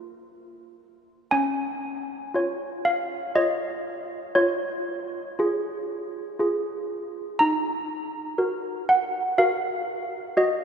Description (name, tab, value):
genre	classical, tune for handbells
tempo	60 BPM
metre	3/4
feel	straight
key	Db major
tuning	A4 = 440 Hz
part	malleted handbells	solo	0.0-10.6 s	Bb3 to Bb5	-24 LUFS	equal	none
room	wet cathedral reverb, RT60 4.8 s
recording	minimal, uncompressed stereo recording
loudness	-24 LUFS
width	side -7 dB against mid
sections	0.0-1.3 A section; 1.3-10.6 B section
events	none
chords	0.0 Bb5; 1.3 Db; 4.3 Db/F; 7.4 Ebm